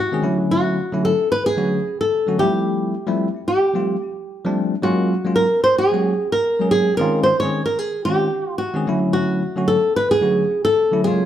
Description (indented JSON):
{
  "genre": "jazz",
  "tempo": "111 BPM",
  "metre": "4/4",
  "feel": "swing 55% on 16ths",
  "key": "unclear",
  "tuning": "A4 = 440 Hz",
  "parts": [
    { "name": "flamenco guitar", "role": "melody", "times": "0.0-11.3 s", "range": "Gb4 to Db5", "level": "-18 LUFS", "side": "equal", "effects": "none" },
    { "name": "barky tine electric piano", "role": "accompaniment", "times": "0.1-11.3 s", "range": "Db3 to Ab4", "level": "-21 LUFS", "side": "equal", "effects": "medium stereo tremolo" }
  ],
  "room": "moderate large studio reverb, RT60 1.0 s",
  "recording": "band playing live in one room",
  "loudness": "-17 LUFS",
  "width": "side -10 dB against mid",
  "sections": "0.0-11.3 A section",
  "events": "none",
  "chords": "0.2 Dmaj9; 2.4 Fmaj9; 4.8 Gbmaj9; 7.0 Dbmaj9; 8.9 Dmaj9"
}